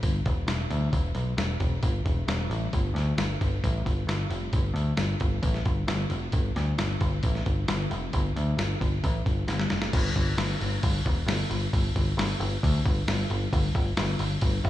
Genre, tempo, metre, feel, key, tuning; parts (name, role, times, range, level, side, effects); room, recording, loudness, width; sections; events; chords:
rock, shoegaze and dream pop; 133 BPM; 4/4; straight; A4 = 443 Hz
overdriven picked electric bass; bass; 0.0-14.7 s; E1 to D2; -27 LUFS; equal
lo-fi sampler-style drum kit; drums; 0.0-14.7 s; crash cymbal, hi-hat, kick drum, snare drum; -27 LUFS; equal
light reverb; small room ambience; -24 LUFS; side -14 dB against mid
0.0-9.9 A section; 9.9-14.7 B section
drum fill 9.5-9.9